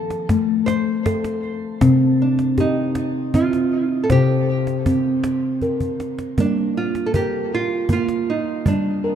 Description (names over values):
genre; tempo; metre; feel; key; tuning
world meditative, meditative tuned percussion; 53 BPM (dotted quarters); 6/8; straight; G minor; A4 = 440 Hz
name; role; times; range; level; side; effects
nylon-string guitar; melody; 0.0-9.2 s; D4 to C5; -25 LUFS; right 3 dB; shimmer reverb, diffuse ambient delay
steel tongue drum; arpeggios; 0.0-9.2 s; C3 to C5; -19 LUFS; left 1 dB; shimmer reverb
cajon; percussion; 0.1-8.9 s; none; -24 LUFS; equal; none
room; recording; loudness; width
wet scoring stage reverb, RT60 1.6 s, small room ambience; dark, warm production; -17 LUFS; side -9 dB against mid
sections
0.0-6.4 A section; 6.4-9.2 B section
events
drum fill 5.6-6.4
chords
0.0 F; 1.8 C5; 6.4 Gm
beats
0.68 | 1.82 2.96 | 4.10 5.24 | 6.38 7.52 | 8.66